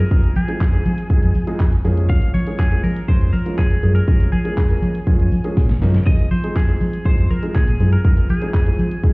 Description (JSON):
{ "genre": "dance-pop", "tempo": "121 BPM", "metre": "4/4", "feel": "straight", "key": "F minor", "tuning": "A4 = 441 Hz", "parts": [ { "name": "twelve-string electric guitar", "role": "melody", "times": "0.0-9.1 s", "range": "Ab4 to F5", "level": "-29 LUFS", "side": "equal", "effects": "dub echo" }, { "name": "vintage muted fingered electric bass", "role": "bass", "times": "0.0-9.1 s", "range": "F2 to F3", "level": "-18 LUFS", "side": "equal", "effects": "sidechain pumping" }, { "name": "warm concert grand piano", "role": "accompaniment", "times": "0.1-9.1 s", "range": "F3 to Bb4", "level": "-27 LUFS", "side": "equal", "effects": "sidechain pumping" }, { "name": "pop drum kit", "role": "drums", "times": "0.1-9.1 s", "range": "handclaps, hi-hat, kick drum, shaker, snare drum", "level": "-17 LUFS", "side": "equal", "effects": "none" } ], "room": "little or no reverb", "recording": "heard muffled through a wall, stone room reverb, EQ", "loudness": "-15 LUFS", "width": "side -27 dB against mid", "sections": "0.0-9.1 A section", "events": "drum fill 5.6-6.1", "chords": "0.0 Fm7; 1.8 Db6/F; 6.1 Fm7", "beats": "| 0.11 0.61 1.10 1.60 | 2.10 2.59 3.09 3.58 | 4.08 4.58 5.07 5.57 | 6.06 6.56 7.06 7.55 | 8.05 8.54 9.04" }